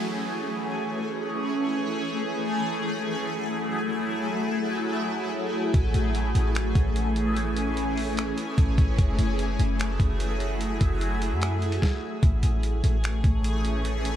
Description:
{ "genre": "hip hop, atmospheric cloud-rap", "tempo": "148 BPM", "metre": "4/4", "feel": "half-time", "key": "A major", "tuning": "A4 = 440 Hz", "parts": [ { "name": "shimmering ambient pad", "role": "sustained chords", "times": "0.0-14.2 s", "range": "E3 to G#4", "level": "-27 LUFS", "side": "equal", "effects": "chorus, built-in reverb, phaser, sidechain pumping" }, { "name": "downlifter", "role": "sound effects", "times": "0.0-2.5 s", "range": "none", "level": "-43 LUFS", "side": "equal", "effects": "none" }, { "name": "drifting glass-harmonics texture", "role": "texture", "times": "0.0-14.2 s", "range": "F#2 to E5", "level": "-37 LUFS", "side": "left 2 dB", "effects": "chorus, built-in reverb" }, { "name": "clean 808-style bass", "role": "bass", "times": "5.7-14.2 s", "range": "F#1 to F#2", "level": "-25 LUFS", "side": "equal", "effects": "none" }, { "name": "boom bap sampler-style drum kit", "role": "drums", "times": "5.7-14.1 s", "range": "finger snaps, hi-hat, kick drum, snare drum", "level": "-26 LUFS", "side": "equal", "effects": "none" } ], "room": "moderate studio reverb, RT60 0.5 s", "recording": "none", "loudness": "-23 LUFS", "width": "side -11 dB against mid", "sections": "0.0-12.2 A section; 12.2-14.2 B section", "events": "none", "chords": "0.0 Amaj7; 2.5 F#m9; 5.7 Amaj7; 9.0 F#m9; 12.2 Amaj7" }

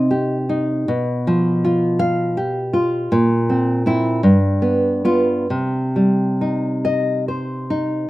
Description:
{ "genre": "romantic piece for solo classical guitar", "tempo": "44-56 BPM (dotted quarters)", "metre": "6/8", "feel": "rubato", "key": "C minor", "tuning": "A4 = 439 Hz", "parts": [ { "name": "nylon-string guitar", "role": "solo", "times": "0.0-8.1 s", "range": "G2 to F5", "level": "-16 LUFS", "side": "equal", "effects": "none" } ], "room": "light reverb", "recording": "recorded outdoors, with no room sound", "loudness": "-16 LUFS", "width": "side -17 dB against mid", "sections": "0.0-8.1 A section", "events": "none", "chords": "0.0 Cm; 0.9 G7/B; 3.1 C7/Bb; 4.2 G7; 5.5 Cm" }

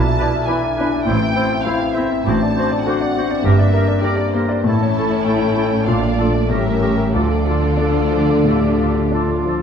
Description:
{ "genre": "classical, romantic movement for piano and orchestra", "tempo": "89-105 BPM", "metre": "4/4", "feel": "rubato", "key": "D minor", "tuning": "A4 = 440 Hz", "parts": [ { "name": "clear grand piano", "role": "melody", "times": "0.0-9.6 s", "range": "A1 to E5", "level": "-19 LUFS", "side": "left 3 dB", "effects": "none" }, { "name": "muted symphonic violin section", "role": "melody", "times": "0.0-9.5 s", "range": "C5 to A5", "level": "-27 LUFS", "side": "left 2 dB", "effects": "none" }, { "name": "warm clarinet", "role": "second line", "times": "0.0-9.6 s", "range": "E4 to A4", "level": "-26 LUFS", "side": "left 1 dB", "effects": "none" }, { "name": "warm oboe", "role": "second line", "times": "0.0-9.6 s", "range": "A4 to C5", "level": "-30 LUFS", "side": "right 3 dB", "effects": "none" }, { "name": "warm French horn section", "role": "sustained chords", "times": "0.0-9.5 s", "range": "F3 to E4", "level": "-25 LUFS", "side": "left 2 dB", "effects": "none" }, { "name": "muted studio double bass section", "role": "bass", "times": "0.0-9.6 s", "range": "G1 to D2", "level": "-22 LUFS", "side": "right 3 dB", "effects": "none" }, { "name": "muted symphonic cello section", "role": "bass", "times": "0.0-9.6 s", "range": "G2 to D3", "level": "-23 LUFS", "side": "right 3 dB", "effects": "none" }, { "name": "bright large flute ensemble", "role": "second line", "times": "0.2-9.6 s", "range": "C#6 to E6", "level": "-33 LUFS", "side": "left 2 dB", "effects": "none" }, { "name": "muted chamber violin section", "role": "second line", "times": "0.5-9.6 s", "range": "D4 to D5", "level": "-28 LUFS", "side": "equal", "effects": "none" }, { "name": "muted chamber viola section", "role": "accompaniment", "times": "0.5-9.6 s", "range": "D3 to D4", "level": "-26 LUFS", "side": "right 1 dB", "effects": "none" } ], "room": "moderate scoring stage reverb, RT60 1.6 s", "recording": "dark, warm production", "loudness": "-15 LUFS", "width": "side -7 dB against mid", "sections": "0.0-9.6 A section", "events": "none", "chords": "0.0 E7/B; 1.1 Am; 2.3 D7/A; 3.4 Gm; 4.7 A; 5.9 Bbmaj7; 6.5 A7b9; 7.2 Dm" }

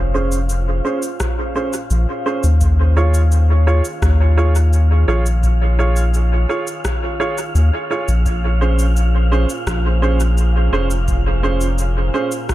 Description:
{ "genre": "ambient dub", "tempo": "85 BPM", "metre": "4/4", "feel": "straight", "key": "Bb minor", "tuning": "A4 = 439 Hz", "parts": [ { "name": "warm analog pad", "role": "sustained chords", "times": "0.0-12.5 s", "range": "Bb2 to Db5", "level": "-34 LUFS", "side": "equal", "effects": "chorus, tremolo" }, { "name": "round analog bass", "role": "bass", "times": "0.0-12.1 s", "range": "F1 to Eb2", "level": "-14 LUFS", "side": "equal", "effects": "none" }, { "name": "wind-like tuned noise texture", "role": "texture", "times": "0.0-12.5 s", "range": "F4 to F5", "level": "-28 LUFS", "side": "right 1 dB", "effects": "built-in reverb" }, { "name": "clear upright piano", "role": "stabs", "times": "0.1-12.3 s", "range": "Db4 to Db5", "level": "-22 LUFS", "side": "right 3 dB", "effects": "low-pass filter, dub echo" }, { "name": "electronic cabasa and rim click", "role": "drums", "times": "0.3-12.5 s", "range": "none", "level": "-30 LUFS", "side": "equal", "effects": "dub echo" }, { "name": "electronic kick drum", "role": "drums", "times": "1.2-12.5 s", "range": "none", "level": "-23 LUFS", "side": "equal", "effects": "none" } ], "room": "little or no reverb", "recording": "echo-heavy mix", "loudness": "-14 LUFS", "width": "side -15 dB against mid", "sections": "0.0-12.5 A section", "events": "fade-in on analog synth pad 0.0-12.5; filter sweep on upright piano 0.0-12.5", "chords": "0.0 Bbm7; 2.6 Eb9sus4; 8.3 Bbm7" }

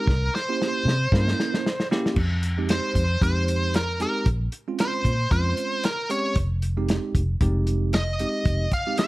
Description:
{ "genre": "straight-eighth soul blues", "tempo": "115 BPM", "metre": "4/4", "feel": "swing 55% on 16ths", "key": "F minor", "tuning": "A4 = 439 Hz", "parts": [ { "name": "biting lead guitar", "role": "melody", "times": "0.0-9.1 s", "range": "Bb4 to F5", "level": "-26 LUFS", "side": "equal", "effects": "overdrive, plate reverb" }, { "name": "bell-like tine electric piano", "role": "accompaniment", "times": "0.0-9.1 s", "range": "Ab3 to Bb4", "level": "-29 LUFS", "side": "moving between equal and right 7 dB", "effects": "auto-pan, plate reverb" }, { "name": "vintage muted fingered electric bass", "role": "bass", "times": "0.1-8.7 s", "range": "F1 to C3", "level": "-24 LUFS", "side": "equal", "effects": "none" }, { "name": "warm soul drum kit", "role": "drums", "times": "0.1-9.1 s", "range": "crash cymbal, hi-hat, kick drum, snare drum", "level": "-25 LUFS", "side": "equal", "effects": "none" } ], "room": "light reverb", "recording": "none", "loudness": "-21 LUFS", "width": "side -19 dB against mid", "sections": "0.0-2.2 A section; 2.2-9.1 B section", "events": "lead electric guitar solo 0.0-2.2; drum fill 0.1-2.2", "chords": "0.1 C7b9; 2.2 Fm9; 4.3 Bbm9; 6.4 Fm9" }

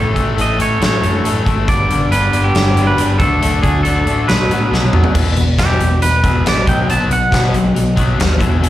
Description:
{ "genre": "quiet-loud alternative rock", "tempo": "138 BPM", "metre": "4/4", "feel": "straight", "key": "unclear", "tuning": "A4 = 438 Hz", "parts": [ { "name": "twangy electric guitar", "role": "melody", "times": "0.0-7.5 s", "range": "G4 to A5", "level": "-19 LUFS", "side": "right 3 dB", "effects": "warbly pitch drift, slapback echo, tape echo" }, { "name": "twelve-string electric guitar", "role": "arpeggios", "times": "0.0-8.7 s", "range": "E2 to A4", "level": "-23 LUFS", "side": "right 2 dB", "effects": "none" }, { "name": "raw garage guitar", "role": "riff", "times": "0.0-8.7 s", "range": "E2 to D4", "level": "-19 LUFS", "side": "left 5 dB", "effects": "overdrive, slapback echo" }, { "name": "overdriven picked electric bass", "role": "bass", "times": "0.0-8.7 s", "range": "E1 to A2", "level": "-17 LUFS", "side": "equal", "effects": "none" }, { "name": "huge arena drum kit", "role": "drums", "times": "0.2-8.7 s", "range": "crash cymbal, hi-hat, kick drum, snare drum, toms", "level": "-17 LUFS", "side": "equal", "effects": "none" } ], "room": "little or no reverb", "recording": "live gig heard through the venue's PA, club reverb", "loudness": "-12 LUFS", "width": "side -14 dB against mid", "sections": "0.0-5.2 A section; 5.2-8.7 B section", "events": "half time 0.0-5.2; drum fill 4.7-5.2; clean electric guitar solo 5.2-8.7", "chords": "0.0 A; 1.7 G; 3.2 D; 4.3 B; 5.2 Emaj7; 6.7 B" }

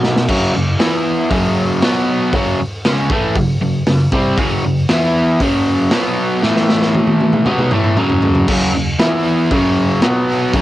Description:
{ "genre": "garage rock duo or trio", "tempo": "117 BPM", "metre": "4/4", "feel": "straight", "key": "unclear", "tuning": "A4 = 440 Hz", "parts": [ { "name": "crunchy overdriven guitar", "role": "riff", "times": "0.0-10.6 s", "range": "F#2 to F#4", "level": "-14 LUFS", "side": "equal", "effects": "cassette tape" }, { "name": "raw garage drum kit", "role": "drums", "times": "0.0-10.6 s", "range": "crash cymbal, hi-hat, kick drum, snare drum, toms", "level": "-18 LUFS", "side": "equal", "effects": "none" } ], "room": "light reverb", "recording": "home recording on cassette", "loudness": "-13 LUFS", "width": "side -15 dB against mid", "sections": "0.3-8.5 A section; 8.5-10.6 A section", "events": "drum fill 0.0, 6.4-8.5", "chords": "0.3 F#5; 0.8 E5; 1.3 F#5; 1.8 B5; 2.3 F#5; 4.9 E5; 5.4 F#5; 5.9 B5; 6.4 A5; 7.5 F#5; 9.0 E5; 9.5 F#5; 10.0 B5" }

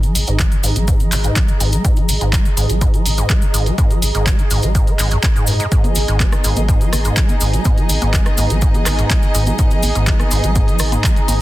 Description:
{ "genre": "acid house", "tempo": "124 BPM", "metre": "4/4", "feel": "straight", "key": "G# minor", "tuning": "A4 = 441 Hz", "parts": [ { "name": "acid bass, square", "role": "riff", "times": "0.0-11.4 s", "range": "F#2 to G#3", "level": "-22 LUFS", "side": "equal", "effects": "overdrive, analog chorus, sidechain pumping, digital delay" }, { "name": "punchy analog drum machine", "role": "drums", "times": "0.0-11.4 s", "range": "congas, handclaps, hi-hat, rim click", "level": "-22 LUFS", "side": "equal", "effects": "none" }, { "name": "cabasa", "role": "percussion", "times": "0.0-11.4 s", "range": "none", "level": "-26 LUFS", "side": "left 2 dB", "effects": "none" }, { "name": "granular cloud pad", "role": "texture", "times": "0.0-11.4 s", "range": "G#4 to A#5", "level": "-26 LUFS", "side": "right 2 dB", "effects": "built-in reverb, sidechain pumping" }, { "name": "saturated sub bass", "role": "bass", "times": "0.2-11.4 s", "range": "G#1 to G#2", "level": "-18 LUFS", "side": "equal", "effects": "sidechain pumping" }, { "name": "electronic kick drum", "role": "drums", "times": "0.4-11.1 s", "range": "none", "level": "-15 LUFS", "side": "equal", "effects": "none" }, { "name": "warm chamber string section", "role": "sustained chords", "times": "5.7-11.4 s", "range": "B3 to D#5", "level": "-25 LUFS", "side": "right 1 dB", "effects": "sidechain pumping" } ], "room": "little or no reverb", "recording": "dense, heavily limited modern master", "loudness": "-13 LUFS", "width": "side -16 dB against mid", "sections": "0.0-11.4 A section", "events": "filter sweep on acid bass 0.0-11.4", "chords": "0.0 G#m" }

